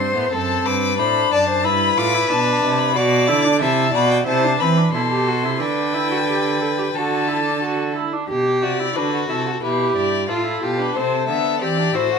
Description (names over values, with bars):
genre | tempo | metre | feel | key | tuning
classical, baroque-style fugue for string quartet | 90 BPM | 4/4 | straight | G major | A4 = 440 Hz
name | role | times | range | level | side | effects
rich violin | melody | 0.0-12.2 s | A4 to D6 | -22 LUFS | left 10 dB | none
rich violin | second line | 0.0-12.2 s | E4 to E5 | -23 LUFS | left 3 dB | none
rich viola | accompaniment | 0.0-12.2 s | B3 to A4 | -23 LUFS | right 3 dB | none
rich cello | bass | 0.0-12.2 s | F#2 to E3 | -22 LUFS | right 5 dB | none
room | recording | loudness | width
moderate large studio reverb, RT60 1.2 s | none | -16 LUFS | side -6 dB against mid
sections
0.0-8.3 A section; 8.3-12.2 B section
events
none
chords
0.3 D7/F#; 1.6 G; 3.0 Bm; 5.6 Dsus4; 7.0 D; 8.3 G/B; 9.6 G7; 11.0 C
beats
| 0.33 0.99 1.65 2.31 | 2.96 3.62 4.28 4.94 | 5.60 6.28 6.95 7.62 | 8.29 8.96 9.63 10.29 | 10.96 11.61